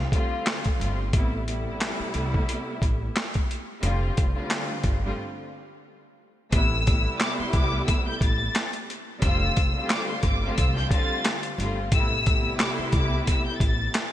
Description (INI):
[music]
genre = hip hop, boom-bap hip-hop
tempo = 89 BPM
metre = 4/4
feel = swing 56% on 16ths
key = A minor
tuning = A4 = 440 Hz
[part]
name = upright bass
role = bass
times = 0.0-13.9 s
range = F1 to C2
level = -28 LUFS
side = equal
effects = none
[part]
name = warm studio string section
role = accompaniment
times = 0.1-14.1 s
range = C3 to F4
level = -30 LUFS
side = equal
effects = cassette tape, high-pass filter, low-pass filter
[part]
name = boom bap sampler-style drum kit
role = drums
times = 0.1-14.1 s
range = handclaps, hi-hat, kick drum, snare drum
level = -25 LUFS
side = equal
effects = vintage 12-bit sampler grit
[part]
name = rich studio violin section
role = melody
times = 6.5-14.1 s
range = C6 to A6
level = -29 LUFS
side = left 2 dB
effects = high-pass filter, low-pass filter
[sound]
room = light reverb, small room ambience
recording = bright 1980s-style digital production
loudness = -22 LUFS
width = side -12 dB against mid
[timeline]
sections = 0.0-6.5 A section; 6.5-14.1 B section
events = break 5.2-6.5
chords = 0.0 F69; 1.1 Am9; 3.8 F69; 6.5 Am9; 9.2 F69; 11.9 Am9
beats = 0.46 | 1.13 1.81 2.48 3.16 | 3.83 4.50 5.18 5.85 | 6.53 7.20 7.88 8.55 | 9.22 9.90 10.57 11.25 | 11.92 12.59 13.27 13.94